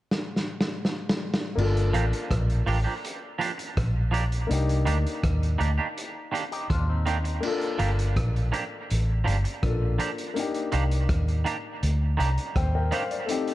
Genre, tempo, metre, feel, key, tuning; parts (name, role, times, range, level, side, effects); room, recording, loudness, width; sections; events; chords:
lovers rock reggae; 82 BPM; 4/4; straight; G minor; A4 = 439 Hz
vintage drum kit; drums; 0.1-13.5 s; crash cymbal, hi-hat, kick drum, rim click, snare drum; -30 LUFS; equal
warm baby grand piano; accompaniment; 1.6-13.5 s; A3 to Bb5; -31 LUFS; left 4 dB
vintage muted fingered electric bass; bass; 1.6-12.9 s; G1 to Eb2; -24 LUFS; equal
twangy electric guitar; stabs; 1.9-13.0 s; Eb3 to G4; -32 LUFS; right 4 dB; lush chorus, dub echo
electric guitar with an envelope filter; arpeggios; 6.5-7.4 s; C4 to G4; -35 LUFS; left 3 dB; spring reverb
light reverb, small room ambience; dark, warm production; -24 LUFS; side -15 dB against mid
0.0-1.6 A section; 1.6-7.4 B section; 7.4-13.5 C section
drum fill 0.1-1.6; grand piano fill 11.8-13.3
0.0 N.C.; 1.6 Gm7; 4.5 Cm9; 7.4 Gm7; 10.4 Cm9